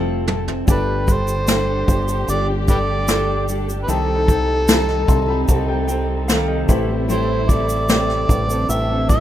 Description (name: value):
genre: acoustic pop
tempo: 75 BPM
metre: 4/4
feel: straight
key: unclear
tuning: A4 = 440 Hz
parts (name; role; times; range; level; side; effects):
- clear baby grand piano; accompaniment; 0.0-9.2 s; G3 to C6; -31 LUFS; left 5 dB; none
- fingerpicked steel-string acoustic guitar; accompaniment; 0.0-9.2 s; A2 to A4; -24 LUFS; equal; double-tracked left and right
- fingered electric bass; bass; 0.0-9.2 s; F1 to C2; -22 LUFS; equal; none
- vintage brush drum kit; drums; 0.3-9.2 s; kick drum, shaker, snare drum, toms; -18 LUFS; equal; none
- overdriven harmonica; melody; 0.7-9.2 s; G4 to E5; -22 LUFS; equal; ping-pong delay
- dark studio string section; sustained chords; 0.7-9.2 s; C3 to G4; -28 LUFS; left 2 dB; none
room: little or no reverb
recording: rough home demo mix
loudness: -16 LUFS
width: side -12 dB against mid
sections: 0.7-9.2 A section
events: grand piano fill 0.0-0.7, 4.7-7.1; drum fill 0.0-0.7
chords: 0.0 Fmaj7; 0.7 Gsus2; 3.9 Cm6; 6.7 Am7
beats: | 0.68 1.48 2.28 3.08 | 3.88 4.69 5.49 6.29 | 7.09 7.89 8.69